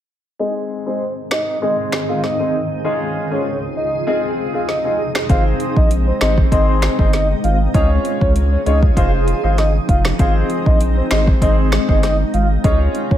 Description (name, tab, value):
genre	dancehall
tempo	98 BPM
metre	4/4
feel	straight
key	Ab major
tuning	A4 = 440 Hz
part	soft octave-layered synth lead	melody	0.4-13.2 s	C5 to F5	-22 LUFS	equal	chorus, tremolo, low-pass filter, tape echo
part	warm baby grand piano	accompaniment	0.4-13.2 s	Ab3 to Db5	-22 LUFS	left 2 dB	lush chorus, sidechain pumping, low-pass filter
part	granular cloud pad	sustained chords	1.0-13.2 s	Db2 to Ab4	-24 LUFS	right 1 dB	built-in reverb, analog chorus, sidechain pumping, low-pass filter
part	afro-pop drum kit	drums	1.3-13.2 s	finger snaps, hi-hat, kick drum, snare drum	-17 LUFS	equal	overdrive
part	saturated sub bass	bass	5.3-13.2 s	F1 to Db2	-17 LUFS	equal	none
room	light reverb, digital ambience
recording	none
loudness	-14 LUFS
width	side -11 dB against mid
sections	0.4-5.3 A section; 5.3-13.2 B section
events	filter sweep 0.4-5.3; kick muted 2.8-5.3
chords	0.4 Ab; 2.8 Db; 4.1 Fm7; 5.3 Ab; 7.7 Db; 9.0 Fm7; 10.2 Ab; 12.6 Db